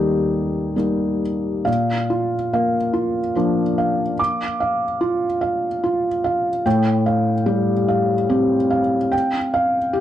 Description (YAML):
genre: neoclassical minimalist piano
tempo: 72 BPM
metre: 3/4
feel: rubato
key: Bb major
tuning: A4 = 440 Hz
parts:
  - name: felt-muted upright piano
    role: solo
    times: 0.0-10.0 s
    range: Eb2 to D6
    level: -18 LUFS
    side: equal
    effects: none
room: light reverb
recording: dark, warm production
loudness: -18 LUFS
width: side -11 dB against mid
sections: 0.0-1.7 A section; 1.7-10.0 B section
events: none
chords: 0.0 Eb; 1.7 Bb; 6.7 Fadd9/A